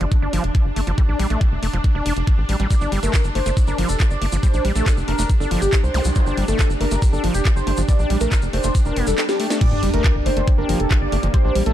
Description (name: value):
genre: psychedelic trance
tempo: 139 BPM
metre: 4/4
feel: straight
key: G minor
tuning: A4 = 442 Hz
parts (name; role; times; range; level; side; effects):
- swarming drone; sustained chords; 0.0-11.7 s; Bb3 to D4; -30 LUFS; equal; built-in reverb, sidechain pumping
- overdriven acid bass; riff; 0.0-11.7 s; F3 to D4; -27 LUFS; equal; auto-pan, sidechain pumping, tape echo
- tight sequencer bass; bass; 0.0-11.7 s; F1 to C2; -22 LUFS; equal; none
- drum and bass drum kit; drums; 0.0-11.7 s; crash cymbal, handclaps, hi-hat, snare drum; -28 LUFS; equal; none
- warbly tape-like pad; texture; 0.0-11.7 s; D4 to G5; -30 LUFS; right 1 dB; chorus, built-in reverb, sidechain pumping
- electronic kick drum; drums; 0.1-11.4 s; none; -17 LUFS; equal; none
- wide unison lead; melody; 2.7-11.7 s; G4 to D5; -26 LUFS; equal; phaser, sidechain pumping, tape echo
- tube shaker; percussion; 2.7-9.6 s; none; -34 LUFS; left 2 dB; none
- zap, swell and sub drop; sound effects; 5.9-6.1, 8.9-11.3 s; none; -29 LUFS; equal; none
room: little or no reverb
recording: dark, warm production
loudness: -16 LUFS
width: side -12 dB against mid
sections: 0.0-9.6 A section; 9.6-11.7 B section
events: swell 8.9-9.6; drum fill 9.2-9.6; drop 9.6-11.7; impact 9.6-11.3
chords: 0.0 G5